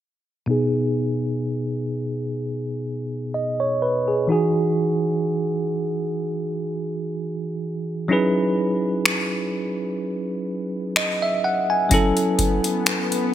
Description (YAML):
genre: contemporary R&B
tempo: 63 BPM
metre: 4/4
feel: swing 54% on 16ths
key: B major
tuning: A4 = 440 Hz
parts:
  - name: bell-like tine electric piano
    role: accompaniment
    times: 0.5-13.3 s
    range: B2 to G#5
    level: -21 LUFS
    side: right 1 dB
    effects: medium stereo tremolo, low-pass filter
  - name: swell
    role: sound effects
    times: 12.3-13.3 s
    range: none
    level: -29 LUFS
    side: left 4 dB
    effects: none
  - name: booming analog drum machine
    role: drums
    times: 9.1-13.3 s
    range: finger snaps, hi-hat, kick drum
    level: -21 LUFS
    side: left 1 dB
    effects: none
room: light reverb, digital ambience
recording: none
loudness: -21 LUFS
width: side -11 dB against mid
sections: 0.5-13.3 A section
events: filter sweep on tine electric piano 0.5-13.3; swell 12.3-13.3; tine electric piano fill 12.9-13.3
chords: 0.5 B6; 4.3 Emaj9; 8.1 F#13sus4; 11.9 F#m9